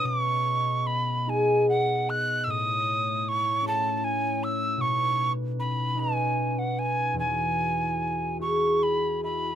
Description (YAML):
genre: celtic folk, Celtic slow air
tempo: 51 BPM (dotted quarters)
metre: 6/8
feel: uneven beats, rubato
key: unclear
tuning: A4 = 440 Hz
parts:
  - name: breathy mid whistle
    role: melody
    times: 0.0-9.6 s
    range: F#5 to F#6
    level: -26 LUFS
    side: right 2 dB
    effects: none
  - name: concert harp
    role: accompaniment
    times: 0.0-9.6 s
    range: E2 to G#5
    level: -28 LUFS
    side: left 1 dB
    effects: none
  - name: glass harmonica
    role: sustained chords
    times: 0.0-9.6 s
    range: A3 to D#5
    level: -36 LUFS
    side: equal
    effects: none
room: light reverb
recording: minimal, uncompressed stereo recording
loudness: -24 LUFS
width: side -10 dB against mid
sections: 0.0-9.6 A section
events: harp fill 8.4-9.6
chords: 0.1 B6; 2.5 A; 4.8 Badd9; 7.2 Eadd9